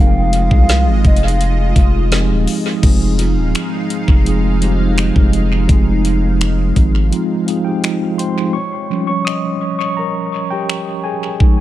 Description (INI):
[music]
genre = contemporary R&B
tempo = 84 BPM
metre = 4/4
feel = straight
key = F minor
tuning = A4 = 440 Hz
[part]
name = hollow clarinet-like synth lead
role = melody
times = 0.0-1.9 s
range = Eb5 to F5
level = -22 LUFS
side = equal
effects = chorus, analog delay
[part]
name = mellow tine electric piano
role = accompaniment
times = 0.0-11.6 s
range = F3 to Eb6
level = -18 LUFS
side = equal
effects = medium stereo tremolo, analog delay
[part]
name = lush unison pad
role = sustained chords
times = 0.0-8.5 s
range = Ab3 to F5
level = -25 LUFS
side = right 3 dB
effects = chorus, phaser
[part]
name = long sustained 808-style bass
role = bass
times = 0.0-7.1 s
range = Eb1 to C2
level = -15 LUFS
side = equal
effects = none
[part]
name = celesta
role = texture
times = 0.0-4.1 s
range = F4 to Bb4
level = -34 LUFS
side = right 3 dB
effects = none
[part]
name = trap drum kit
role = drums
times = 0.3-11.6 s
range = crash cymbal, finger snaps, hi-hat, kick drum, snare drum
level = -14 LUFS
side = equal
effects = vintage 12-bit sampler grit, analog delay
[sound]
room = little or no reverb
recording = echo-heavy mix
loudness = -13 LUFS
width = side -14 dB against mid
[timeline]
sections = 0.0-2.8 A section; 2.8-8.5 B section; 8.5-11.6 C section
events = break 7.1-8.5; tine electric piano fill 7.5-8.5; tine electric piano solo 8.5-11.6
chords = 0.0 Fm7; 8.5 Eb7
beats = 0.69 1.40 2.12 | 2.83 3.55 4.26 4.97 | 5.69 6.40 7.12 7.83 | 8.55 9.26 9.97 10.69 | 11.40